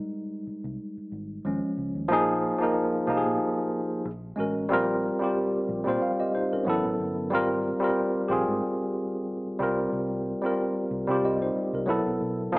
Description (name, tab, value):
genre	R&B, neo-soul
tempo	92 BPM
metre	4/4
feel	swing 54% on 16ths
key	unclear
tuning	A4 = 440 Hz
part	tine electric piano	accompaniment	0.0-12.6 s	F3 to F5	-25 LUFS	equal	medium stereo tremolo
part	vintage muted fingered electric bass	bass	0.0-12.6 s	G1 to C3	-37 LUFS	equal	none
room	moderate echo chamber reverb, RT60 1.8 s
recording	small speaker sound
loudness	-24 LUFS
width	side -26 dB against mid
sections	0.0-2.1 A section; 2.1-12.6 B section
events	tine electric piano solo 0.0-2.1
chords	0.0 Fm9 (rootless); 1.4 Eb9sus4; 2.1 Bb7sus4; 4.0 Gbadd9; 4.7 Bbsus2; 6.7 Asus2; 7.3 Ab69; 9.6 C5; 11.9 B7sus4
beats	0.13 0.79 1.44 | 2.09 2.74 3.40 4.05 | 4.70 5.35 6.00 6.66 | 7.31 7.96 8.61 9.27 | 9.92 10.57 11.22 11.87 | 12.53